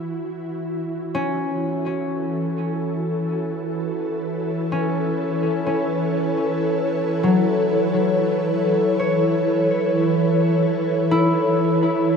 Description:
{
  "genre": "ambient",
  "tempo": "free time",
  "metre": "none",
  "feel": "none",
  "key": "unclear",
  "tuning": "A4 = 441 Hz",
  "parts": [
    { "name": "ethereal airy pad", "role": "sustained chords", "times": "0.0-12.2 s", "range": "E3 to C#5", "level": "-20 LUFS", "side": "equal", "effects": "ensemble chorus, built-in reverb" },
    { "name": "concert harp", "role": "arpeggios", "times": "1.1-12.2 s", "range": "F#3 to C#5", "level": "-24 LUFS", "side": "left 2 dB", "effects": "ping-pong delay" }
  ],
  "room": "wet huge ambient reverb, RT60 7.8 s",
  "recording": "cassette tape",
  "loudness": "-19 LUFS",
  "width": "side -6 dB against mid",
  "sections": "0.0-12.2 A section",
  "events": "none",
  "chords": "0.0 Esus2; 0.8 Aadd9/E"
}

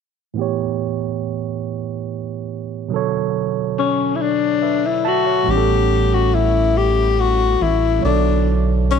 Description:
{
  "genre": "slow six-eight R&B",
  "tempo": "47 BPM (dotted quarters)",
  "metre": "6/8",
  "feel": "straight",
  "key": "unclear",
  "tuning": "A4 = 440 Hz",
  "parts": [
    { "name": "overdriven tine electric piano", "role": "accompaniment", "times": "0.3-9.0 s", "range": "A2 to A5", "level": "-22 LUFS", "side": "right 12 dB", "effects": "none" },
    { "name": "breathy tenor saxophone", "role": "melody", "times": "3.8-9.0 s", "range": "C#4 to G4", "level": "-17 LUFS", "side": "left 9 dB", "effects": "none" },
    { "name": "rubbery square bass", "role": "bass", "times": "5.5-9.0 s", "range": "A1 to B1", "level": "-18 LUFS", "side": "right 1 dB", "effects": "none" }
  ],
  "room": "light reverb, studio reverb",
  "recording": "1960s-style stereo with parts hard left and right, low-pass filter",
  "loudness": "-16 LUFS",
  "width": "side -6 dB against mid",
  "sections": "0.4-5.5 A section; 5.5-9.0 B section",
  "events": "filter sweep 0.4-5.5",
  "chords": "0.4 A9; 2.9 Bm9; 5.5 A9; 8.0 Bm9"
}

